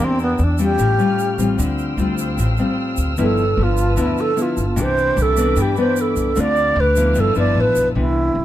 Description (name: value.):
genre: bossa nova.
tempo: 151 BPM.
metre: 4/4.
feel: straight.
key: unclear.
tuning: A4 = 440 Hz.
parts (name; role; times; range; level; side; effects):
bright wooden-headed alto flute; melody; 0.0-8.4 s; B3 to D5; -19 LUFS; right 2 dB; none.
nylon-string guitar; accompaniment; 0.0-8.4 s; G2 to G4; -20 LUFS; left 3 dB; none.
muted studio string section; sustained chords; 0.0-7.9 s; C4 to E#6; -30 LUFS; equal; none.
upright bass; bass; 0.0-8.4 s; G1 to G2; -20 LUFS; equal; none.
egg shaker; percussion; 0.2-8.0 s; none; -34 LUFS; right 6 dB; none.
room: light reverb.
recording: none.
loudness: -15 LUFS.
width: side -12 dB against mid.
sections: 0.0-8.0 A section.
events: alto flute solo 0.0-8.0.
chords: 0.0 Em7b5; 0.8 A7alt; 1.6 Dm11; 3.2 G13; 4.8 Cmaj9; 6.4 Dm7; 7.2 G13.